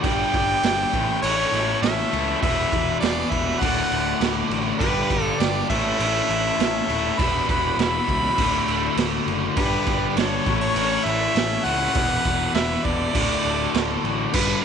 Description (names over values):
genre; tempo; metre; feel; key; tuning
classic rock; 101 BPM; 4/4; straight; D major; A4 = 440 Hz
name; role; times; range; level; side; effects
warm harmonica; melody; 0.0-14.6 s; B4 to B5; -24 LUFS; left 1 dB; tape echo
octave-fuzz lead guitar; second line; 0.0-14.1 s; G4 to F#5; -33 LUFS; right 11 dB; distortion
cranked stack guitar; riff; 0.0-14.6 s; D2 to A3; -26 LUFS; left 13 dB; overdrive
overdriven electric guitar; riff; 0.0-14.6 s; D2 to A4; -31 LUFS; right 14 dB; none
fuzz picked electric bass; bass; 0.0-14.6 s; D1 to C#2; -29 LUFS; equal; overdrive
raw garage drum kit; drums; 0.0-14.5 s; crash cymbal, kick drum, snare drum; -24 LUFS; right 5 dB; none
room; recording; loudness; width
light reverb, small room ambience; 1960s-style stereo with parts hard left and right, nothing above 10.8 kHz; -19 LUFS; side -7 dB against mid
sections
0.0-14.3 A section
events
none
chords
0.0 G5; 0.9 A; 2.4 E5; 3.6 D; 4.8 G; 5.7 A; 7.2 E5; 8.4 D; 9.6 G; 10.5 A; 12.0 E5; 13.1 D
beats
| 0.04 0.63 1.23 1.82 | 2.42 3.01 3.61 4.21 | 4.80 5.40 5.99 6.59 | 7.18 7.78 8.38 8.97 | 9.57 10.17 10.76 11.36 | 11.96 12.55 13.15 13.74 | 14.34